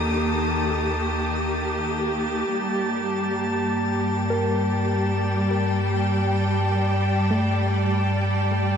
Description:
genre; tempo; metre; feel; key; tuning
ambient; 50 BPM; 4/4; straight; unclear; A4 = 439 Hz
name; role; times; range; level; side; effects
clear studio string section; sustained chords; 0.0-8.8 s; Eb3 to Eb6; -23 LUFS; equal; shimmer reverb
soft round pluck; arpeggios; 0.0-8.8 s; A3 to Bb4; -32 LUFS; left 1 dB; chorus, ping-pong delay, shimmer reverb
warm sub bass; bass; 0.0-8.8 s; Eb2 to G2; -26 LUFS; equal; none
drifting glass-harmonics texture; texture; 0.0-8.8 s; A5; -31 LUFS; left 1 dB; chorus, built-in reverb, shimmer reverb
room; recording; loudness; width
wet huge ambient reverb, RT60 7.3 s; in a vast, echoing space, cassette tape; -21 LUFS; side -7 dB against mid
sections
0.0-8.8 A section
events
none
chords
0.0 Eb; 2.5 Gm

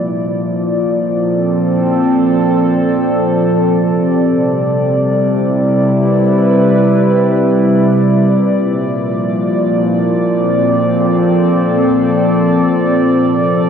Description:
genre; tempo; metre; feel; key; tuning
ambient; free time; none; none; unclear; A4 = 440 Hz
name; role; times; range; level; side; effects
warbly tape-like pad; solo; 0.0-13.7 s; Bb2 to D5; -11 LUFS; equal; chorus, built-in reverb, tape echo
room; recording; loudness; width
wet cathedral reverb, RT60 5.8 s; dark, warm production; -11 LUFS; side -7 dB against mid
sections
0.0-13.7 A section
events
none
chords
0.0 Bbmaj7; 3.6 Cmaj7; 8.4 Bbmaj7

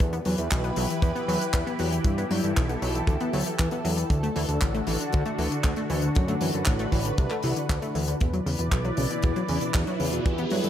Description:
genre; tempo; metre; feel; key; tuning
italo disco; 117 BPM; 4/4; straight; unclear; A4 = 440 Hz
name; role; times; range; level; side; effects
lush unison pad; sustained chords; 0.0-10.7 s; D3 to D5; -30 LUFS; equal; chorus, phaser
analog pluck; arpeggios; 0.0-10.7 s; B2 to B3; -30 LUFS; left 2 dB; chorus, ping-pong delay
fat analog bass; bass; 0.0-10.7 s; A1 to G2; -29 LUFS; equal; none
kick drum; drums; 0.0-10.4 s; none; -25 LUFS; equal; small room ambience
tight funk drum kit; drums; 0.0-10.7 s; handclaps, hi-hat; -34 LUFS; left 1 dB; small room ambience
riser; sound effects; 8.9-10.7 s; none; -34 LUFS; right 1 dB; none
room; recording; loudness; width
light reverb, studio reverb; none; -23 LUFS; side -10 dB against mid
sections
0.0-8.2 A section; 8.2-10.7 B section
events
riser 8.9-10.7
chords
0.0 Em; 4.1 D; 8.2 Bm

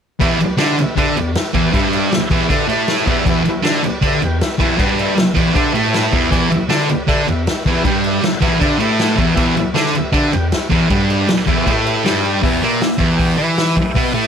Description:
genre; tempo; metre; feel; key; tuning
garage rock duo or trio; 157 BPM; 4/4; straight; E minor; A4 = 441 Hz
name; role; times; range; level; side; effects
overdriven combo organ; sustained chords; 0.2-14.3 s; G4 to B5; -26 LUFS; left 1 dB; none
thick fuzz guitar; riff; 0.2-14.3 s; E2 to E4; -15 LUFS; equal; distortion
vintage drum kit; drums; 0.2-14.1 s; crash cymbal, hi-hat, kick drum, snare drum; -20 LUFS; equal; none
room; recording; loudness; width
light reverb; none; -13 LUFS; side -7 dB against mid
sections
0.2-12.4 A section; 12.4-14.3 B section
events
transistor combo organ fill 5.7-6.3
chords
0.2 Em

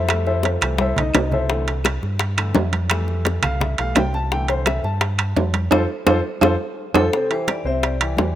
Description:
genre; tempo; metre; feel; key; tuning
Afro-Cuban jazz; 170 BPM; 4/4; straight; C major; A4 = 440 Hz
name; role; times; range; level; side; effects
warm upright piano; accompaniment; 0.0-8.3 s; C3 to A5; -24 LUFS; left 2 dB; none
fingered electric bass; bass; 0.0-8.4 s; B1 to G2; -22 LUFS; equal; none
bongos; percussion; 0.1-8.4 s; none; -24 LUFS; left 5 dB; none
claves; percussion; 0.1-7.0 s; none; -30 LUFS; left 2 dB; none
congas; percussion; 0.1-8.4 s; none; -29 LUFS; equal; none
timbales; percussion; 0.1-8.4 s; none; -23 LUFS; right 6 dB; none
vibraphone with medium hard mallets; melody; 7.0-8.3 s; A4 to E5; -24 LUFS; left 1 dB; none
room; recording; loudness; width
light reverb; rough home demo mix; -18 LUFS; side -12 dB against mid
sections
0.0-7.1 A section; 7.1-8.4 B section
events
upright piano solo 0.0-7.1; drum fill 0.4-1.5, 6.1-7.1; band accent 5.7-7.1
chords
0.1 Fmaj7; 1.5 C6; 2.9 Fmaj7; 4.3 C6; 5.7 F; 7.1 C

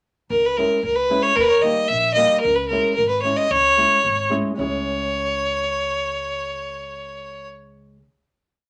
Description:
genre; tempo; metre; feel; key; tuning
balkan folk, Balkan wedding band; 112 BPM; 2/4; straight; C# dorian sharp4; A4 = 440 Hz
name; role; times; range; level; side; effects
rich fiddle; melody; 0.3-7.5 s; A#4 to E5; -21 LUFS; equal; none
upright bass; bass; 0.3-8.0 s; G#1 to D#2; -36 LUFS; equal; none
flamenco guitar; accompaniment; 0.6-8.0 s; G3 to G#4; -29 LUFS; equal; none
room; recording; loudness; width
moderate small room reverb, RT60 0.5 s; none; -20 LUFS; mono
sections
0.3-4.6 A section; 4.6-6.7 final chord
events
none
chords
0.3 C#m; 1.4 D#; 2.5 C#m

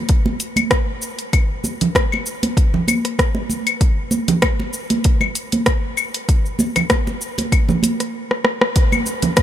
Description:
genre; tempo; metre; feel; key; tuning
downtempo; 97 BPM; 4/4; swing 55% on 16ths; none; none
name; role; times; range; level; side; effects
deep house drum kit; drums; 0.1-9.4 s; claves, hi-hat, rim click, shaker; -20 LUFS; left 2 dB; overdrive
electronic kick drum; drums; 0.1-9.4 s; none; -17 LUFS; equal; overdrive
congas; percussion; 0.3-9.4 s; none; -21 LUFS; right 3 dB; none
room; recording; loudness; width
light reverb; none; -16 LUFS; side -11 dB against mid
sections
0.0-8.8 A section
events
stop 8.1-8.8; drum fill 8.3-8.8; band accent 8.6-8.9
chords
none

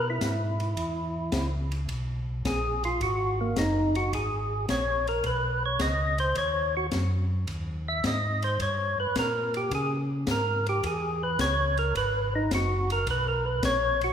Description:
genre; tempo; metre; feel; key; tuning
soul jazz organ trio; 107 BPM; 4/4; swing 69% on 8ths; G# minor; A4 = 440 Hz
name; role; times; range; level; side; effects
percussive tonewheel organ; melody; 0.0-14.1 s; A#3 to E5; -27 LUFS; equal; slow rotary speaker, overdrive
mellow tonewheel organ; bass; 0.0-14.1 s; F#1 to C#3; -30 LUFS; equal; overdrive, chorus vibrato, slow rotary speaker
open jazz drum kit; drums; 0.2-14.1 s; hi-hat, kick drum, ride cymbal, snare drum; -34 LUFS; left 2 dB; none
room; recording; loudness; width
wet recital hall reverb, RT60 1.7 s; recorded in a church or concert hall; -25 LUFS; side -8 dB against mid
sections
0.0-14.1 A section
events
tonewheel organ solo 0.0-14.1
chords
0.0 C#m7; 3.0 G#m7; 7.5 D#; 9.7 C#m; 12.0 G#m7

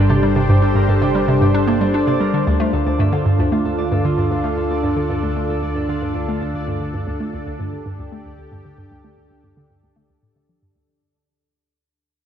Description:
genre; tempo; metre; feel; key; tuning
ambient, sequencer-driven space music; 114 BPM; 4/4; straight; D minor; A4 = 440 Hz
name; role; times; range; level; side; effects
lush unison pad; sustained chords; 0.0-10.9 s; D3 to C5; -22 LUFS; equal; chorus
Celtic harp; arpeggios; 0.0-9.0 s; D4 to D5; -26 LUFS; left 1 dB; auto-pan, ping-pong delay
hollow square pluck; riff; 0.0-10.9 s; D2 to D4; -19 LUFS; equal; chorus, vintage 12-bit sampler grit, ping-pong delay
analog drone; bass; 0.0-10.9 s; G1 to D2; -27 LUFS; equal; chorus
bubbling stepped-filter texture; texture; 0.0-10.9 s; D4 to D5; -31 LUFS; right 1 dB; chorus, built-in reverb
room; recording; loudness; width
moderate plate reverb, RT60 2.8 s; echo-heavy mix; -16 LUFS; side -9 dB against mid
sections
0.0-2.5 A section; 2.5-10.9 B section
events
fade-out 2.5-10.9; filter sweep on synth arpeggio sound 2.5-10.9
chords
0.0 Gmadd9; 2.5 Dm

